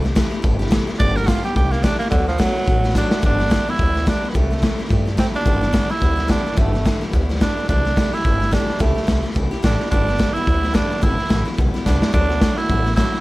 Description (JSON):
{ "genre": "rockabilly", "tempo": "215 BPM", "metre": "4/4", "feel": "swing 58% on 8ths", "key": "G major", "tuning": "A4 = 440 Hz", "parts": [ { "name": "picked steel-string acoustic guitar", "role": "accompaniment", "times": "0.0-13.2 s", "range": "G2 to G4", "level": "-26 LUFS", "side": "left 2 dB", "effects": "none" }, { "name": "upright bass", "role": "bass", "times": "0.0-13.2 s", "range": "G1 to G2", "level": "-22 LUFS", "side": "equal", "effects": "none" }, { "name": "raw garage drum kit", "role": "drums", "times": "0.0-13.2 s", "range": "hi-hat, kick drum, snare drum", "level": "-19 LUFS", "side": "equal", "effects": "none" }, { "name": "growling tenor saxophone", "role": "melody", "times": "1.0-13.2 s", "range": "D3 to D5", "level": "-23 LUFS", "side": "right 2 dB", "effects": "none" } ], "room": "light reverb", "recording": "none", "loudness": "-16 LUFS", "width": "side -19 dB against mid", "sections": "0.0-3.2 A section; 3.2-13.2 B section", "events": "tenor saxophone solo 0.0-3.2; drum fill 3.0, 11.9", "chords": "0.0 C6; 1.0 G6; 1.6 C6; 2.1 D6; 3.2 G6; 4.3 C6; 5.5 G6; 7.7 C6; 9.9 G6; 12.1 D6", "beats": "0.17 0.44 0.72 | 1.00 1.28 1.56 1.84 | 2.12 2.40 2.67 2.95 | 3.23 3.51 3.79 4.07 | 4.35 4.62 4.90 5.18 | 5.46 5.74 6.02 6.30 | 6.58 6.85 7.13 7.41 | 7.69 7.97 8.24 8.52 | 8.80 9.08 9.36 9.64 | 9.91 10.19 10.47 10.75 | 11.03 11.31 11.58 11.86 | 12.14 12.42 12.70 12.98" }